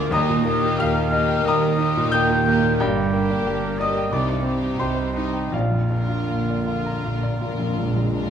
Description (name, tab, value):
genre	classical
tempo	78-92 BPM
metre	4/4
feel	rubato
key	Eb major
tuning	A4 = 436 Hz
part	clear concert grand piano	melody	0.0-8.3 s	Bb1 to G6	-23 LUFS	left 2 dB	none
part	warm symphonic violin section	melody	0.0-8.3 s	G4 to Bb4	-34 LUFS	left 3 dB	none
part	mellow hollow silver concert flute	second line	0.0-8.1 s	Eb5 to G6	-29 LUFS	left 3 dB	none
part	warm oboe	second line	0.0-8.1 s	Eb4 to G5	-31 LUFS	right 4 dB	none
part	warm symphonic violin section	second line	0.0-8.3 s	D4 to F4	-33 LUFS	left 4 dB	none
part	dark symphonic viola section	accompaniment	0.0-8.3 s	Bb3 to D4	-30 LUFS	right 3 dB	none
part	dark symphonic double bass section	bass	0.0-8.3 s	G1 to Eb2	-28 LUFS	right 5 dB	none
part	warm symphonic cello section	bass	0.0-8.3 s	Eb2 to C3	-28 LUFS	right 6 dB	none
part	mellow French horn section	sustained chords	0.1-8.3 s	D3 to Eb4	-31 LUFS	left 5 dB	none
part	timpani	percussion	5.5-8.3 s	Bb2	-28 LUFS	equal	none
room	moderate scoring stage reverb, RT60 1.6 s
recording	close, detailed microphones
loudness	-19 LUFS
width	side -8 dB against mid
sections	0.0-8.3 A section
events	timpani fill 5.5-8.3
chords	0.1 Eb; 2.8 Gm; 4.1 Cm; 5.5 Bb